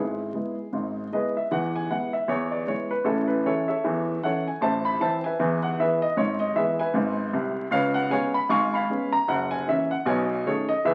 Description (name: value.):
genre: jazz, stride piano.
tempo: 154 BPM.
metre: 4/4.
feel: swing 59% on 8ths.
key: E major.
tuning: A4 = 440 Hz.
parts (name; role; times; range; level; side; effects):
warm upright piano; solo; 0.0-10.9 s; F#1 to C#6; -25 LUFS; equal; none.
room: wet large studio reverb, RT60 1.2 s.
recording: very old 78 rpm record, vinyl crackle.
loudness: -25 LUFS.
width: mono.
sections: 0.0-1.5 A section; 1.5-10.9 A section.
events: none.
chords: 0.0 E/G#; 1.5 E; 3.1 A; 4.6 Am; 5.4 E; 6.2 E/G#; 7.7 C#7; 9.3 F#7; 10.1 B13.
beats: 0.34 0.73 1.12 | 1.51 1.90 2.29 2.67 | 3.06 3.45 3.84 4.23 | 4.62 5.01 5.39 5.78 | 6.17 6.56 6.95 7.34 | 7.73 8.12 8.51 8.90 | 9.29 9.68 10.07 10.46 | 10.85.